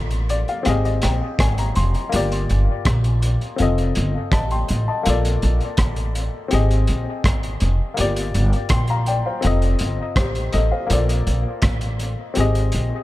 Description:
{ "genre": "lovers rock reggae", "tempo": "82 BPM", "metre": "4/4", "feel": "straight", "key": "Bb major", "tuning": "A4 = 441 Hz", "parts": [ { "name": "dark baby grand piano", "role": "accompaniment", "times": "0.0-13.0 s", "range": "Bb3 to C6", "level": "-24 LUFS", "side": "left 4 dB", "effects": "dub echo" }, { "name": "upright bass", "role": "bass", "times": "0.0-12.9 s", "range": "F1 to Bb1", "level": "-20 LUFS", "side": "equal", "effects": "none" }, { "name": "crunchy breakbeat drum kit", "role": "drums", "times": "0.1-12.9 s", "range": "hi-hat, kick drum, rim click", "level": "-24 LUFS", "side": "equal", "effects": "none" } ], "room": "small room ambience", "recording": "none", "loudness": "-18 LUFS", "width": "side -16 dB against mid", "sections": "0.0-13.0 A section", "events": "grand piano fill 0.0-2.1", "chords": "0.0 Bbmaj7; 0.7 Abmaj7; 2.1 Gm7; 3.6 F7; 5.0 Bbmaj7; 6.5 Abmaj7; 8.0 Gm7; 9.4 F7; 10.9 Bbmaj7; 12.4 Abmaj7", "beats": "0.66 1.39 | 2.12 2.85 3.58 4.32 | 5.05 5.78 6.51 7.24 | 7.97 8.71 9.44 10.17 | 10.90 11.63 12.36" }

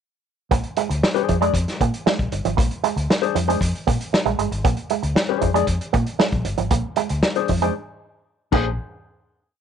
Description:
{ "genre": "funk", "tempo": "116 BPM", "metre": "4/4", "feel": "straight", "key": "Bb mixolydian", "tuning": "A4 = 438 Hz", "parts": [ { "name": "electric guitar with an envelope filter", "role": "riff", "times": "0.5-8.7 s", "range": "F3 to Bb3", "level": "-24 LUFS", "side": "right 13 dB", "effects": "none" }, { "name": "vintage muted fingered electric bass", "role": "bass", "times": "0.5-8.8 s", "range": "G1 to Bb2", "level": "-24 LUFS", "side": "left 1 dB", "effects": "none" }, { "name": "vintage drum kit", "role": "drums", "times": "0.5-8.6 s", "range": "crash cymbal, hi-hat, kick drum, snare drum", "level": "-22 LUFS", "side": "left 1 dB", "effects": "none" }, { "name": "hollow-body jazz guitar", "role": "accompaniment", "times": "1.1-8.7 s", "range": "D4 to D5", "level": "-22 LUFS", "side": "left 15 dB", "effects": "none" } ], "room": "light reverb", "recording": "1960s-style stereo with parts hard left and right, nothing above 10.8 kHz", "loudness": "-19 LUFS", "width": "side -8 dB against mid", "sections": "0.5-8.8 groove; 8.8-9.6 final hit", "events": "break 7.7-8.8", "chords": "0.5 Bb9; 8.8 N.C.", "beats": "| 0.51 1.03 1.54 2.06 | 2.57 3.09 3.61 4.12 | 4.64 5.16 5.68 6.19 | 6.71 7.23 7.75 8.27" }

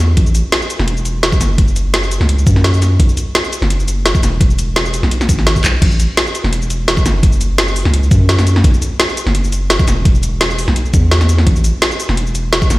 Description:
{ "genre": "liquid drum and bass", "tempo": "170 BPM", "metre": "4/4", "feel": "swing 53% on 16ths", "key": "A major", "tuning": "A4 = 440 Hz", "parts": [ { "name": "long sustained 808-style bass", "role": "bass", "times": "0.0-12.8 s", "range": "E1 to F#2", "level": "-14 LUFS", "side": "equal", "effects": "none" }, { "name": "drum and bass drum kit", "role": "drums", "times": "0.2-12.8 s", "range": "cabasa, crash cymbal, handclaps, hi-hat, snare drum", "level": "-16 LUFS", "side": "equal", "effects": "none" }, { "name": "electronic kick drum", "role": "drums", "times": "0.2-12.7 s", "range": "none", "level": "-12 LUFS", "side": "equal", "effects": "overdrive" } ], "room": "light reverb", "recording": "played on a big sound system in a bare room, stone room reverb", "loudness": "-11 LUFS", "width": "side -19 dB against mid", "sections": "0.0-5.8 A section; 5.8-12.8 A section", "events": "drop 0.0-5.8, 5.8-12.8; drum fill 5.6", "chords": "none", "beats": "| 0.17 0.52 0.88 1.23 | 1.58 1.94 2.29 2.64 | 3.00 3.35 3.70 4.05 | 4.41 4.76 5.11 5.46 | 5.82 6.17 6.52 6.88 | 7.23 7.58 7.94 8.29 | 8.64 8.99 9.35 9.70 | 10.05 10.41 10.76 11.11 | 11.46 11.82 12.17 12.52" }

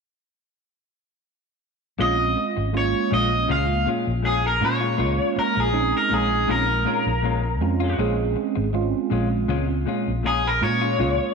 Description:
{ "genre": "blues", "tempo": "80 BPM", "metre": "4/4", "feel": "swing 54% on 16ths", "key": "Bb minor", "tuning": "A4 = 442 Hz", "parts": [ { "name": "overdriven semi-hollow guitar", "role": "melody", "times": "2.0-11.3 s", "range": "Ab4 to F5", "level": "-22 LUFS", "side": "left 1 dB", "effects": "none" }, { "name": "mellow tine electric piano", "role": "accompaniment", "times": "2.0-11.3 s", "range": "Ab3 to Ab4", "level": "-26 LUFS", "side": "right 10 dB", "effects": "phaser" }, { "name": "clean electric guitar", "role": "stabs", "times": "2.0-11.2 s", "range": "Bb2 to F4", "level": "-29 LUFS", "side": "left 11 dB", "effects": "slapback echo" }, { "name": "vintage muted fingered electric bass", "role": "bass", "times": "2.0-11.2 s", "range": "Ab1 to Bb2", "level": "-25 LUFS", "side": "left 1 dB", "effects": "none" } ], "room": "moderate echo chamber reverb, RT60 2.1 s", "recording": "1960s-style stereo with parts hard left and right", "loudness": "-20 LUFS", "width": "side -5 dB against mid", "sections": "2.0-11.3 A section", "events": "none", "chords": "2.0 Bbm7", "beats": "| 1.99 2.74 3.49 4.24 | 4.99 5.74 6.49 7.24 | 7.99 8.74 9.49 10.24 | 10.99" }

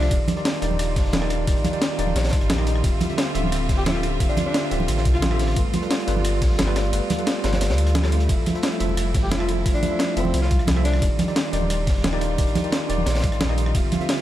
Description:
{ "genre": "liquid drum and bass", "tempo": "176 BPM", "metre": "4/4", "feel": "straight", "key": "unclear", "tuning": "A4 = 440 Hz", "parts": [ { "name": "breathy alto saxophone", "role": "melody", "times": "0.0-0.1, 3.8-5.6, 9.2-11.1 s", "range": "C4 to G4", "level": "-31 LUFS", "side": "left 1 dB", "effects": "digital delay" }, { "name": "tine electric piano", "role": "accompaniment", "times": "0.0-14.2 s", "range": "D3 to E5", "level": "-26 LUFS", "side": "right 1 dB", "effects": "overdrive, fast stereo tremolo, digital delay" }, { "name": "clear studio string section", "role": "sustained chords", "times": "0.0-14.2 s", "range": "G3 to E5", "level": "-32 LUFS", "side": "right 1 dB", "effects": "none" }, { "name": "warm sub bass", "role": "bass", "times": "0.0-13.8 s", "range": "D1 to D2", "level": "-23 LUFS", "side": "equal", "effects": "none" }, { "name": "breakbeat sampler-style drum kit", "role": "drums", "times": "0.0-14.2 s", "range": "hi-hat, ride cymbal, rim click, snare drum", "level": "-27 LUFS", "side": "left 1 dB", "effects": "none" }, { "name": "crunchy breakbeat drum kit", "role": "drums", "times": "0.1-14.2 s", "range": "hi-hat, snare drum", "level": "-33 LUFS", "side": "equal", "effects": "high-pass filter on hats, high-pass filter on snare, high-pass filter on room" }, { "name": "electronic kick drum", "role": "drums", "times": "0.1-13.8 s", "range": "none", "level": "-22 LUFS", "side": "equal", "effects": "none" }, { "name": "congas", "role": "percussion", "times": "0.3-14.0 s", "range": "none", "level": "-27 LUFS", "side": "right 3 dB", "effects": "none" } ], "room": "light reverb, small room ambience", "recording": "dark, warm production", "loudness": "-19 LUFS", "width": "side -13 dB against mid", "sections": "0.0-14.2 A section", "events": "kick drops out 6.9-8.3", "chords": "0.1 Ebmaj7; 2.8 Dm11; 5.6 G9; 8.3 Fmaj7; 11.0 Ebmaj7", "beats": "| 0.11 0.45 0.79 1.14 | 1.48 1.82 2.16 2.50 | 2.84 3.18 3.52 3.86 | 4.20 4.54 4.88 5.22 | 5.57 5.91 6.25 6.59 | 6.93 7.27 7.61 7.95 | 8.29 8.63 8.97 9.32 | 9.66 10.00 10.34 10.68 | 11.02 11.36 11.70 12.04 | 12.38 12.72 13.07 13.41 | 13.75 14.09" }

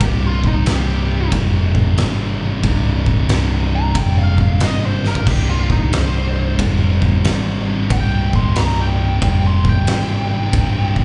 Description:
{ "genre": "stoner and doom metal", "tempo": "91 BPM", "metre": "4/4", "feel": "swing 65% on 8ths", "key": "unclear", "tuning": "A4 = 440 Hz", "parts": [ { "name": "fuzz lead guitar", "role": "melody", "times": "0.0-11.0 s", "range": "Eb4 to C6", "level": "-28 LUFS", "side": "equal", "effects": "wah, distortion, slapback echo, tape echo" }, { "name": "thick fuzz guitar", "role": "riff", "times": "0.0-11.0 s", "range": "C2 to C3", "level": "-25 LUFS", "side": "equal", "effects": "distortion" }, { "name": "thick fuzz guitar", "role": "riff", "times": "0.0-11.0 s", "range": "C2 to C3", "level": "-28 LUFS", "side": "equal", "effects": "distortion, slapback echo" }, { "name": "overdriven picked electric bass", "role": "bass", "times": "0.0-11.0 s", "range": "C1 to Ab1", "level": "-20 LUFS", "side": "equal", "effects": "none" }, { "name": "oversized low-tuned drum kit", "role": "drums", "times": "0.0-11.0 s", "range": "crash cymbal, kick drum, ride cymbal, snare drum, splash cymbal, toms", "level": "-22 LUFS", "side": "equal", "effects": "none" } ], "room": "studio reverb", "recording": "live gig heard through the venue's PA, club reverb, nothing above 10.6 kHz", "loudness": "-17 LUFS", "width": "mono", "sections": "0.0-11.0 A section", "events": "lead electric guitar solo 0.0-11.0; drum fill 4.9-5.3", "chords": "0.0 C5", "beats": "| 0.01 0.67 1.33 1.98 | 2.64 3.30 3.96 4.61 | 5.27 5.93 6.59 7.24 | 7.90 8.56 9.22 9.87 | 10.53" }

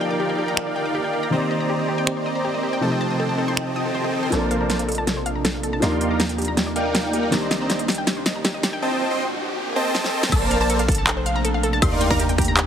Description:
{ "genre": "future bass", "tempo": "160 BPM", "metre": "4/4", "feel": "half-time", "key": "Bb major", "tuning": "A4 = 442 Hz", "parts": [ { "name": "felt-muted upright piano", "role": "accompaniment", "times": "0.0-8.8 s", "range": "C3 to D5", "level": "-28 LUFS", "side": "left 1 dB", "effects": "sidechain pumping, digital delay" }, { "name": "shimmering ambient pad", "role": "sustained chords", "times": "0.0-12.7 s", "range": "C3 to D6", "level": "-30 LUFS", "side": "right 2 dB", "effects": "chorus, built-in reverb, sidechain pumping" }, { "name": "wide unison pluck", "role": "arpeggios", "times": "0.0-12.6 s", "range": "G4 to Eb6", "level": "-29 LUFS", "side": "left 1 dB", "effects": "sidechain pumping, digital delay" }, { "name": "supersaw chords", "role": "riff", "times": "0.0-12.2 s", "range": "Bb3 to C6", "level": "-24 LUFS", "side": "right 1 dB", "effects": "sidechain pumping, low-pass filter, digital delay" }, { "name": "big-room dance drum kit", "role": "drums", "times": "0.6-12.6 s", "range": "crash cymbal, finger snaps, handclaps, hi-hat, snare drum, woodblock", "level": "-23 LUFS", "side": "equal", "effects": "none" }, { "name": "riser and swell", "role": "sound effects", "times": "2.5-10.3 s", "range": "none", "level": "-34 LUFS", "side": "equal", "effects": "none" }, { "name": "long sustained 808-style bass", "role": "bass", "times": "4.3-12.7 s", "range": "Bb1 to Eb2", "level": "-27 LUFS", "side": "equal", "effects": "sidechain pumping" }, { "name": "wide unison pluck", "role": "arpeggios", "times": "10.3-12.2 s", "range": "A5 to C6", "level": "-30 LUFS", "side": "right 2 dB", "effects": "sidechain pumping, digital delay" }, { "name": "electronic kick drum", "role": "drums", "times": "10.3-12.5 s", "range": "none", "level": "-22 LUFS", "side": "equal", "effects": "none" } ], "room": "light reverb, digital ambience", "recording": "heavily compressed radio sound, multiband compression, high-pass filter", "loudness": "-19 LUFS", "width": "side -8 dB against mid", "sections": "0.0-4.3 A section; 4.3-10.3 B section; 10.3-12.7 C section", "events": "riser 2.5-4.3, 4.3-10.3; build-up 4.3-10.3; drum fill 4.3-8.8, 9.9-10.3; filter sweep on supersaw synth 4.3-10.3; filter sweep on ambient pad 4.3-10.3; filter sweep 4.3-10.3; swell 9.6-10.3; drop 10.3-12.7", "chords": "0.0 Ebmaj7; 1.3 Cm9; 2.8 F7/C; 4.3 Bbmaj9; 5.8 Ebmaj7; 7.3 Cm9; 8.8 Cm6; 10.3 Bbmaj9; 11.8 Ebmaj7", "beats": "0.20 0.57 0.95 | 1.32 1.70 2.07 2.45 | 2.82 3.20 3.57 3.95 | 4.32 4.70 5.07 5.45 | 5.82 6.20 6.57 6.95 | 7.32 7.70 8.07 8.45 | 8.82 9.20 9.57 9.95 | 10.32 10.70 11.07 11.45 | 11.82 12.20 12.57" }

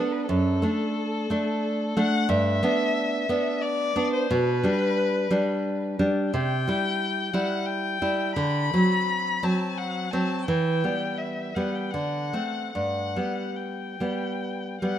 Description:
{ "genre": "romantic duo for violin and classical guitar", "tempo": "72-92 BPM", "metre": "3/4", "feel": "rubato", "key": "G major", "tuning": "A4 = 438 Hz", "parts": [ { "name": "warm violin", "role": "melody", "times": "0.0-15.0 s", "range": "A4 to B5", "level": "-29 LUFS", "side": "left 4 dB", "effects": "none" }, { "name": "nylon-string guitar", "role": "accompaniment", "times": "0.0-15.0 s", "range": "F#2 to E4", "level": "-24 LUFS", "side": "right 1 dB", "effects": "none" } ], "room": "light reverb, small room ambience", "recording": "rough home demo mix", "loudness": "-23 LUFS", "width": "side -10 dB against mid", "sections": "0.0-15.0 A section", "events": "none", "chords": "0.3 D/F#; 2.3 G; 4.3 G/B; 6.3 C; 8.4 D7; 10.5 Em; 11.9 D7; 12.7 G", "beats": "| 0.27 0.95 1.63 | 2.29 2.95 3.62 | 4.29 4.96 5.63 | 6.33 7.00 7.66 | 8.36 9.07 9.77 | 10.47 11.19 11.94 | 12.74 13.57 14.40" }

